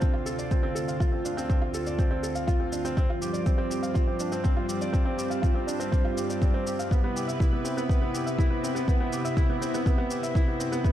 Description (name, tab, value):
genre	piano and strings electronica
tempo	122 BPM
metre	4/4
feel	straight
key	unclear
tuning	A4 = 440 Hz
part	lush unison pad	sustained chords	0.0-10.9 s	D2 to B4	-33 LUFS	equal	chorus, sidechain pumping
part	felt-muted upright piano	riff	0.0-10.9 s	B3 to F5	-30 LUFS	right 1 dB	digital delay
part	electronic kick drum	drums	0.0-10.9 s	none	-24 LUFS	equal	none
part	shaker	drums	0.0-10.9 s	none	-41 LUFS	left 1 dB	high-pass filter on perc
room	light reverb, small room ambience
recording	dark, warm production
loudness	-24 LUFS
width	side -12 dB against mid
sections	0.0-10.9 A section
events	build-up 0.0-10.9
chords	0.0 Dm7; 3.0 G7sus4; 6.9 Cmaj7